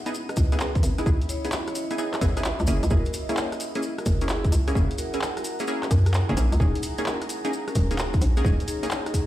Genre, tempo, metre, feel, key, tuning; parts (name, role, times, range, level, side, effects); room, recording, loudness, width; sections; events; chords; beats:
UK garage, two-step garage; 130 BPM; 4/4; swing 67% on 16ths; A4 = 440 Hz
punchy chord stab; stabs; 0.0-8.9 s; A#3 to G#4; -31 LUFS; equal; chorus, tape echo
deep dark ambient pad; texture; 0.0-9.3 s; B3 to B5; -34 LUFS; right 2 dB; chorus, built-in reverb, sidechain pumping
punchy analog drum machine; drums; 0.1-9.3 s; handclaps, hi-hat, rim click; -32 LUFS; equal
maracas; percussion; 0.1-9.3 s; -39 LUFS; left 2 dB
vibraphone with medium mallets; melody; 0.3-9.3 s; C#4 to E5; -35 LUFS; left 2 dB; tape echo
hollow knocking FM bass; bass; 0.4-8.6 s; D#1 to F#2; -23 LUFS; equal
electronic kick drum; drums; 0.4-9.3 s; -22 LUFS; equal
light reverb, digital ambience; played on a big sound system in a bare room, large studio reverb; -22 LUFS; side -14 dB against mid
0.0-9.3 A section
0.0 C#m9; 2.7 F#9; 6.6 D#7sus4
0.14 0.60 | 1.06 1.52 1.98 2.45 | 2.91 3.37 3.83 4.29 | 4.75 5.21 5.68 6.14 | 6.60 7.06 7.52 7.98 | 8.45 8.91